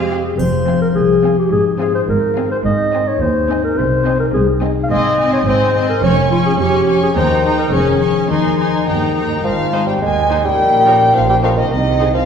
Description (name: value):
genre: cinematic, playful, whimsical film cue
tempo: 106 BPM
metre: 2/4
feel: straight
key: F minor, Ab major from 4.9 s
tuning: A4 = 435 Hz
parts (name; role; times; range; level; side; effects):
- rich studio violin section; melody; 0.0-12.1 s; C5 to Db6; -29 LUFS; left 1 dB; none
- mellow clarinet; second line; 0.0-9.1 s; Eb4 to F5; -16 LUFS; left 1 dB; none
- rich studio viola section; accompaniment; 0.0-12.1 s; Ab3 to C5; -23 LUFS; right 1 dB; none
- concert harp; arpeggios; 0.0-12.3 s; Ab2 to Eb5; -20 LUFS; left 6 dB; none
- clear studio cello section; bass; 0.0-12.2 s; C2 to C3; -23 LUFS; right 3 dB; none
- rich studio double bass section; bass; 0.0-12.2 s; F1 to F2; -22 LUFS; right 2 dB; none
- warm chamber violin section; second line; 0.1-12.3 s; G4 to Ab5; -24 LUFS; left 1 dB; none
- triangle; percussion; 0.4-1.5 s; none; -42 LUFS; right 1 dB; none
- mellow bassoon; accompaniment; 9.4-12.3 s; Eb3 to Ab3; -14 LUFS; right 1 dB; none
room: wet scoring stage reverb, RT60 1.6 s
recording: heard from further back in the room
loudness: -12 LUFS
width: side -7 dB against mid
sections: 0.4-9.4 A section; 9.4-12.3 B section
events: none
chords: 0.4 Fm; 1.5 Fm/Ab; 2.7 Ab; 3.8 Ab/C; 4.9 Ab; 6.0 Db/F; 7.2 Eb; 7.7 Db/F; 8.3 Ab/Eb; 8.9 Eb; 9.4 Ab; 10.6 Eb7/Bb; 11.7 Ab/C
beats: | 0.39 0.96 | 1.52 2.09 | 2.65 3.22 | 3.78 4.34 | 4.91 5.47 | 6.03 6.59 | 7.16 7.72 | 8.29 8.87 | 9.44 10.01 | 10.58 11.15 | 11.71